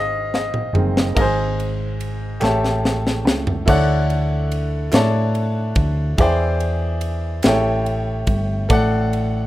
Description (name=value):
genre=slow gospel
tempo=48 BPM (dotted quarters)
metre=6/8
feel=straight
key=D major from 3.7 s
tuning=A4 = 440 Hz
part: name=bright grand piano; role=accompaniment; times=0.0-9.5 s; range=Ab2 to A5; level=-21 LUFS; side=equal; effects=none
part: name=hollow-body short-scale fingered electric bass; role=bass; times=0.0-9.5 s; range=Gb1 to A2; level=-21 LUFS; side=equal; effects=none
part: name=crisp fusion drum kit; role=drums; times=0.3-9.3 s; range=crash cymbal, kick drum, ride cymbal, snare drum, toms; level=-20 LUFS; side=equal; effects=none
part: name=group handclap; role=percussion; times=2.4-7.8 s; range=none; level=-33 LUFS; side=right 1 dB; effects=none
room=little or no reverb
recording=rough home demo mix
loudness=-17 LUFS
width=side -15 dB against mid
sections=0.0-1.2 A section; 1.2-3.7 B section; 3.7-9.5 C section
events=drum fill 0.0-1.2, 2.4-3.7; grand piano solo 0.0-1.2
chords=0.0 Ab; 2.4 A7; 3.7 Dmaj9; 6.2 E7alt; 7.4 A7; 8.7 D/A